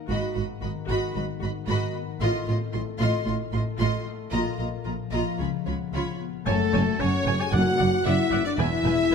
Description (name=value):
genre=cinematic, heroic adventure film score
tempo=113 BPM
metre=4/4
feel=straight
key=unclear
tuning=A4 = 441 Hz
part: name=concert harp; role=arpeggios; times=0.0-9.1 s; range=E2 to F#5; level=-33 LUFS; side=left 12 dB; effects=none
part: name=rich symphonic violin section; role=melody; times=0.1-9.1 s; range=A4 to C6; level=-35 LUFS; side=left 4 dB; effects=none
part: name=rich symphonic violin section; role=second line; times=0.1-9.1 s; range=A4 to G#5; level=-34 LUFS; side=left 3 dB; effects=none
part: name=clear symphonic viola section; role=accompaniment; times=0.1-9.1 s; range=F4 to G#5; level=-32 LUFS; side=right 2 dB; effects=none
part: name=rich symphonic double bass section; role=bass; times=0.1-9.1 s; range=E1 to Db2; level=-29 LUFS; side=right 4 dB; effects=none
part: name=warm symphonic cello section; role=bass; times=0.1-8.9 s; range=E2 to Db3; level=-31 LUFS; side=right 3 dB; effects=none
part: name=warm oboe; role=second line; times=6.5-9.1 s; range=A4 to G#5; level=-31 LUFS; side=right 2 dB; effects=none
part: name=dark French horn section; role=sustained chords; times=6.5-9.1 s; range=A3 to G#4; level=-25 LUFS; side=left 4 dB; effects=none
part: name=timpani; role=percussion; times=7.5-8.3 s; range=F#2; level=-31 LUFS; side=equal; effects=none
room=moderate concert hall reverb, RT60 2.4 s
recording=close, detailed microphones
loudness=-23 LUFS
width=side -6 dB against mid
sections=0.0-6.5 A section; 6.5-9.1 B section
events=none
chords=0.1 Abm7; 2.2 F7/A; 4.3 Bbsus4; 5.4 Db7; 6.5 F#madd9; 7.5 Bm/F#; 8.6 E